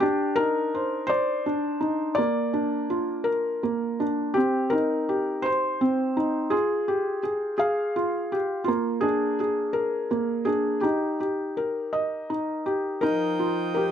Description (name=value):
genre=children's music, lullaby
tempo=55 BPM (dotted quarters)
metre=6/8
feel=straight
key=Eb major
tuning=A4 = 440 Hz
part: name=felt-muted upright piano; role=melody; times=0.0-13.9 s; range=Bb3 to F5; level=-23 LUFS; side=equal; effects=none
part: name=pipe organ, principal chorus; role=sustained chords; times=13.0-13.9 s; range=F3 to G5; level=-30 LUFS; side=right 3 dB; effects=none
room=little or no reverb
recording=close, detailed microphones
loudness=-23 LUFS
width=side -9 dB against mid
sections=0.0-13.0 A section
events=none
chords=0.0 Cmadd9; 2.2 Bb; 4.4 Cm; 6.5 Fmadd9; 8.7 Bb7; 10.8 Eb; 13.0 Ebadd9